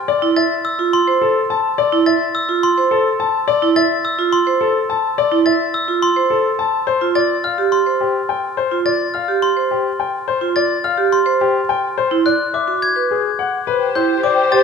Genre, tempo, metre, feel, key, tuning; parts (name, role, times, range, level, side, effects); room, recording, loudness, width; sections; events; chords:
classical, minimalist pattern music; 106 BPM; 3/4; straight; D minor; A4 = 440 Hz
clear baby grand piano; melody; 0.1-14.6 s; G4 to A5; -19 LUFS; left 8 dB
vibraphone with hard mallets; arpeggios; 0.2-14.6 s; E4 to C5; -18 LUFS; right 8 dB
glockenspiel with hard plastic mallets; arpeggios; 0.4-14.6 s; C6 to A6; -19 LUFS; left 1 dB
bright soprano saxophone; second line; 13.7-14.6 s; C5; -21 LUFS; right 1 dB
dark symphonic string section; sustained chords; 13.7-14.6 s; G4 to C5; -19 LUFS; left 5 dB
wet recital hall reverb, RT60 1.4 s; -14 LUFS; side -6 dB against mid
0.0-13.7 A section
0.1 Dm7 (rootless); 6.9 Fadd9; 12.0 E7; 13.7 Am7 (rootless)